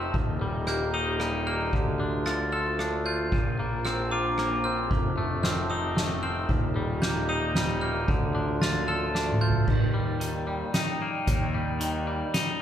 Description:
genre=post-rock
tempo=113 BPM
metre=3/4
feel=straight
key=Eb lydian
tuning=A4 = 440 Hz
part: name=warbly tape-like pad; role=sustained chords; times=0.0-12.6 s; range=D4 to C6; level=-36 LUFS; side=equal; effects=chorus, built-in reverb
part: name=glockenspiel with brass mallets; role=arpeggios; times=0.0-9.7 s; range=D6 to A6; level=-34 LUFS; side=right 2 dB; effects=none
part: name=twangy electric guitar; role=arpeggios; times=0.0-12.6 s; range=Eb2 to A4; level=-30 LUFS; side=left 2 dB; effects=none
part: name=fuzz picked electric bass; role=bass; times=0.0-12.2 s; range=Eb1 to Eb2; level=-31 LUFS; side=equal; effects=overdrive
part: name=soft-mallet drum kit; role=drums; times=0.1-12.5 s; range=crash cymbal, hi-hat, kick drum, ride cymbal, rim click, snare drum, toms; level=-29 LUFS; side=right 1 dB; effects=none
room=moderate large studio reverb, RT60 1.4 s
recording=band playing live in one room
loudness=-24 LUFS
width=side -10 dB against mid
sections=0.0-9.7 A section; 9.7-12.6 B section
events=drum fill 9.2-9.7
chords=0.1 Eb; 1.7 Dm7; 3.3 Bbadd9; 4.9 F7; 6.5 Eb; 8.1 Dm7; 9.7 Ebmaj7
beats=| 0.15 0.68 1.21 | 1.74 2.26 2.79 | 3.32 3.85 4.38 | 4.91 5.44 5.97 | 6.50 7.03 7.56 | 8.09 8.62 9.15 | 9.68 10.21 10.74 | 11.28 11.81 12.34

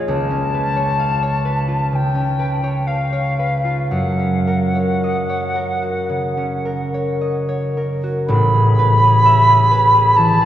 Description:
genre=classical, impressionist duo for flute and harp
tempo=53-68 BPM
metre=4/4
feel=rubato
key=Gb major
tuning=A4 = 440 Hz
part: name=concert harp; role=accompaniment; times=0.0-10.5 s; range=A1 to F5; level=-17 LUFS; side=equal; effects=none
part: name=wooden flute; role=melody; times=0.1-10.5 s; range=F5 to B5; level=-17 LUFS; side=equal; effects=none
room=wet cathedral reverb, RT60 6.3 s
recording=heard from further back in the room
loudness=-14 LUFS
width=side -11 dB against mid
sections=0.0-8.3 A section; 8.3-10.5 B section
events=none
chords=0.1 Dbaug7; 3.9 Gb6; 8.3 Amaj9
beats=| 0.08 0.98 1.92 2.88 | 3.91 5.01 6.09 7.19 | 8.27 9.24 10.18

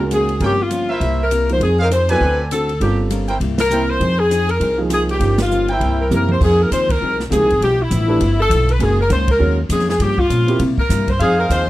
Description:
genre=jazz, big band swing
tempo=200 BPM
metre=4/4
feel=swing 60% on 8ths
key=F minor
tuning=A4 = 441 Hz
part: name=warm grand piano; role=accompaniment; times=0.0-10.6 s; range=F3 to Db5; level=-23 LUFS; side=right 4 dB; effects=none
part: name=upright bass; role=bass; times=0.0-11.7 s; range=Gb1 to C3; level=-18 LUFS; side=equal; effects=none
part: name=warm saxophone section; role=melody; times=0.1-11.7 s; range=E4 to C5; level=-18 LUFS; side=left 1 dB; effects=slapback echo
part: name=hollow-body jazz guitar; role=accompaniment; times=0.1-11.7 s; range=Gb2 to Bb4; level=-26 LUFS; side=left 5 dB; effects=none
part: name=swinging big-band drum kit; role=drums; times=0.1-11.6 s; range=crash cymbal, hi-hat, kick drum, ride cymbal, snare drum, toms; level=-26 LUFS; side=equal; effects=none
part: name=clear trumpet section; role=stabs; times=0.4-6.1, 11.2-11.6 s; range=C4 to Ab5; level=-21 LUFS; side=right 2 dB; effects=none
room=little or no reverb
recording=dry, close 1970s-style studio recording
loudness=-14 LUFS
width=side -16 dB against mid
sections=0.0-6.4 A section; 6.4-11.7 A section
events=band accent 3.6, 5.4, 6.9, 9.3; drum fill 6.1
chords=0.4 Gm7b5; 1.0 C7; 1.6 Fm7; 2.2 D7; 2.8 Gm7b5; 3.4 C7; 4.0 Fm7; 5.2 Gm7b5; 5.8 C7; 6.4 Fm7; 7.6 G13; 8.8 Gb6; 10.0 Gm7b5; 10.6 C7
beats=0.11 | 0.41 0.71 1.01 1.31 | 1.61 1.91 2.21 2.51 | 2.81 3.11 3.41 3.71 | 4.01 4.31 4.61 4.91 | 5.21 5.51 5.81 6.11 | 6.41 6.71 7.01 7.30 | 7.61 7.91 8.20 8.50 | 8.80 9.10 9.40 9.70 | 10.01 10.30 10.61 10.90 | 11.21 11.51

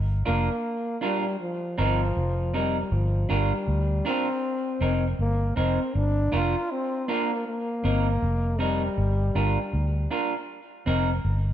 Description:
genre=roots reggae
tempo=79 BPM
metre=4/4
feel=swing 64% on 16ths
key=G minor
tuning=A4 = 441 Hz
part: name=vintage muted fingered electric bass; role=bass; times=0.0-11.5 s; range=F1 to D2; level=-24 LUFS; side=equal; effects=none
part: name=breathy trombone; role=melody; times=0.3-10.1 s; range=F3 to F4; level=-29 LUFS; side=left 1 dB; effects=tape echo
part: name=semi-hollow electric guitar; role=accompaniment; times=0.3-11.1 s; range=C4 to Bb4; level=-29 LUFS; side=right 2 dB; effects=tape echo
room=light reverb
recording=none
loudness=-23 LUFS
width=side -10 dB against mid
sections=0.0-11.5 A section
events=none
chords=0.0 Gm7; 1.4 F7sus4; 2.9 Gm7; 4.4 F7sus4; 5.9 Gm7; 7.5 F7sus4; 9.0 Gm7; 10.5 F7sus4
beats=0.64 1.39 2.15 | 2.91 3.66 4.42 5.18 | 5.94 6.69 7.45 8.21 | 8.96 9.72 10.48 11.24

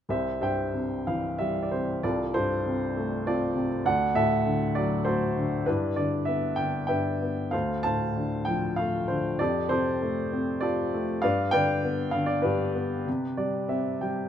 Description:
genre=classical, lyrical solo piano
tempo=97 BPM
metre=3/4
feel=rubato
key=C major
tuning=A4 = 440 Hz
part: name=warm upright piano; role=solo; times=0.1-14.3 s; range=C2 to A5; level=-25 LUFS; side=equal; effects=none
room=light reverb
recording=close, detailed microphones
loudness=-25 LUFS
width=side -9 dB against mid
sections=0.1-14.3 A section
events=upright piano fill 13.1-14.3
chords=0.1 C; 2.0 Fadd9/C; 3.9 D; 5.7 G6; 7.5 Dm7; 9.4 Fadd9; 11.2 G; 13.1 C5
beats=| 0.07 0.73 1.39 | 2.03 2.66 3.27 | 3.86 4.46 5.06 | 5.67 6.28 6.89 | 7.53 8.16 8.78 | 9.40 10.01 10.62 | 11.23 11.83 12.45 | 13.07 13.69

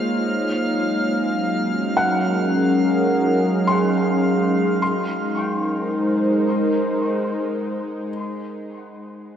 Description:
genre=ambient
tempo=53 BPM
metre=4/4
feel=straight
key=Ab major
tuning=A4 = 440 Hz
part: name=warbly tape-like pad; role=sustained chords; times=0.0-8.6 s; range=Gb3 to Db5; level=-20 LUFS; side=equal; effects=chorus, built-in reverb
part: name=bowed-like drone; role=drone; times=0.0-8.1 s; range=Ab3 to Eb4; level=-27 LUFS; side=left 1 dB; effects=built-in reverb
part: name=drifting glass-harmonics texture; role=texture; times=0.0-4.8 s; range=F5 to F6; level=-29 LUFS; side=equal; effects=chorus, built-in reverb
part: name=felt-muted upright piano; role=arpeggios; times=2.0-9.4 s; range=Gb5 to C6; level=-26 LUFS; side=left 1 dB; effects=diffuse ambient delay
room=wet lush hall reverb, RT60 2.7 s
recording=dreamy mix soaked in reverb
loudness=-18 LUFS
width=side -9 dB against mid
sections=0.0-4.8 A section; 4.8-9.3 B section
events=none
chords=0.3 Gb69; 4.8 Abadd9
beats=| 0.27 1.40 2.53 3.67 | 4.82 5.94 7.05 8.16

